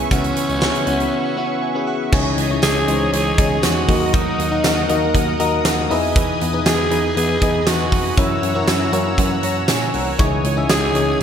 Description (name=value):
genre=1980s-style pop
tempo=119 BPM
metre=4/4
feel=straight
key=C# dorian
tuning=A4 = 440 Hz
part: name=FM electric piano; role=accompaniment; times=0.0-11.2 s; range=C#3 to A#5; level=-22 LUFS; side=left 4 dB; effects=chorus
part: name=brassy analog pad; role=sustained chords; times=0.0-11.2 s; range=A#4 to E6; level=-26 LUFS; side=equal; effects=chorus
part: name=direct-recorded clean electric guitar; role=riff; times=0.0-11.2 s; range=E3 to G#4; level=-28 LUFS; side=right 6 dB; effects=wide subtle chorus
part: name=bell-like tine electric piano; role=bass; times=0.0-11.2 s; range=B#1 to A#2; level=-24 LUFS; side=equal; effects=medium stereo tremolo
part: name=raspy alto saxophone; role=melody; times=0.1-11.2 s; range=C#4 to G#4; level=-22 LUFS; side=right 1 dB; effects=digital delay
part: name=huge arena drum kit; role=drums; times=0.1-11.2 s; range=crash cymbal, hi-hat, kick drum, snare drum, tambourine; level=-20 LUFS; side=right 1 dB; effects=gated reverb
part: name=group handclap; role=percussion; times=0.6-10.8 s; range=none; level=barely audible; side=none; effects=none
room=moderate lush hall reverb, RT60 2.4 s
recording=bright 1980s-style digital production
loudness=-15 LUFS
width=side -8 dB against mid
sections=0.0-2.1 A section; 2.1-11.2 B section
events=break 1.1-2.1; FM electric piano fill 1.4-2.1, 5.2-6.2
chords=0.1 F#7sus4/C#; 2.1 C#madd9; 3.9 D#m; 5.9 Emaj7; 8.2 F#7; 10.2 C#madd9